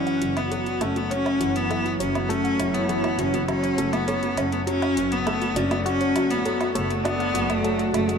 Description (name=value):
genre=piano and strings electronica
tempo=101 BPM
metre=4/4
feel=straight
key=F# minor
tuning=A4 = 439 Hz
part: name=clear cello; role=melody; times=0.0-8.2 s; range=G#3 to C#4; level=-24 LUFS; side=equal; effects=ping-pong delay
part: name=granular cloud pad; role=sustained chords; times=0.0-8.2 s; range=F#3 to F#5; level=-31 LUFS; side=right 1 dB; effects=built-in reverb
part: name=felt-muted upright piano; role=riff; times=0.0-8.2 s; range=E3 to F#4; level=-28 LUFS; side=left 3 dB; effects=ping-pong delay
part: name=soft round pluck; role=arpeggios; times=0.1-8.2 s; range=F#4 to F#5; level=-33 LUFS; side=right 4 dB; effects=chorus, cassette tape, ping-pong delay
part: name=electronic hi-hat and woodblock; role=drums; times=0.1-8.2 s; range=none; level=-34 LUFS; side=right 2 dB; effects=overdrive
part: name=rich studio double bass section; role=bass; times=0.2-8.1 s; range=F#1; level=-30 LUFS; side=equal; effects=none
room=moderate concert hall reverb, RT60 1.9 s, small room ambience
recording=dark, warm production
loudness=-21 LUFS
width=side -6 dB against mid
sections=0.0-8.2 A section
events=build-up 0.0-8.2; filter sweep on synth arpeggio sound 0.0-8.2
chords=0.0 F#m7; 4.7 D/F#